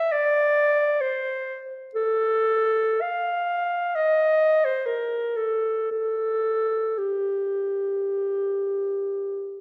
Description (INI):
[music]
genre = classical, free, expressive piece for unaccompanied clarinet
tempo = free time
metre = none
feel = none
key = G minor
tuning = A4 = 443 Hz
[part]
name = clear clarinet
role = solo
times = 0.0-9.6 s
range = G4 to F5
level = -24 LUFS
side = equal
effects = none
[sound]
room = moderate recital hall reverb, RT60 1.3 s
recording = lossy compression artefacts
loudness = -24 LUFS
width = mono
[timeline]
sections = 0.0-9.6 A section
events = none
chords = none